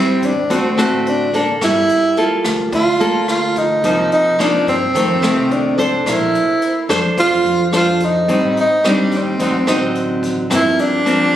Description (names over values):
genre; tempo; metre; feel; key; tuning
bossa nova; 108 BPM; 4/4; straight; unclear; A4 = 440 Hz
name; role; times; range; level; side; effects
breathy tenor saxophone; melody; 0.0-11.4 s; C4 to F4; -16 LUFS; right 1 dB; none
nylon-string guitar; accompaniment; 0.0-11.4 s; F2 to C5; -17 LUFS; equal; none
upright bass; bass; 0.2-11.4 s; G1 to G2; -25 LUFS; left 1 dB; none
jazz brush drum kit; drums; 0.2-11.2 s; hi-hat, kick drum, rim click; -27 LUFS; equal; none
room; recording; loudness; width
light reverb; recorded on a phone in the room, studio reverb; -13 LUFS; side -11 dB against mid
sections
0.0-11.4 A section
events
none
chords
0.0 Am7; 0.5 D7; 1.6 Gm9; 3.8 Cm7; 4.9 F7; 6.1 Bbmaj9; 8.3 Am7b5; 9.4 D7b9; 10.5 Gm7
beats
0.50 1.06 | 1.61 2.17 2.73 3.28 | 3.84 4.39 4.95 5.50 | 6.06 6.62 7.17 7.73 | 8.28 8.84 9.39 9.95 | 10.50 11.06